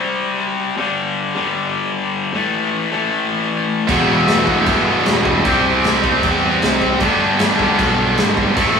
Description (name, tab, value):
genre	punk rock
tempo	154 BPM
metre	4/4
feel	straight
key	unclear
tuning	A4 = 436 Hz
part	distorted electric guitar	riff	0.0-8.8 s	E2 to C4	-19 LUFS	left 5 dB	overdrive
part	distorted electric guitar	riff	3.9-8.8 s	E2 to C4	-22 LUFS	left 1 dB	overdrive
part	tight distorted guitar	riff	3.9-8.8 s	G2 to E4	-16 LUFS	right 4 dB	distortion
part	fuzz picked electric bass	bass	3.9-8.8 s	E1 to E2	-24 LUFS	equal	overdrive
part	big rock drum kit	drums	3.9-8.7 s	crash cymbal, kick drum, snare drum	-20 LUFS	left 1 dB	none
room	light reverb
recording	rough rehearsal-room recording, warm saturation, studio reverb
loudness	-14 LUFS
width	side -6 dB against mid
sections	0.0-8.8 A section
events	none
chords	0.0 C5; 0.8 G5; 2.3 A5; 3.9 Em; 5.5 C; 7.0 G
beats	0.38 | 0.77 1.16 1.55 1.94 | 2.33 2.72 3.11 3.50 | 3.89 4.28 4.67 5.06 | 5.45 5.84 6.23 6.62 | 7.01 7.40 7.79 8.18 | 8.57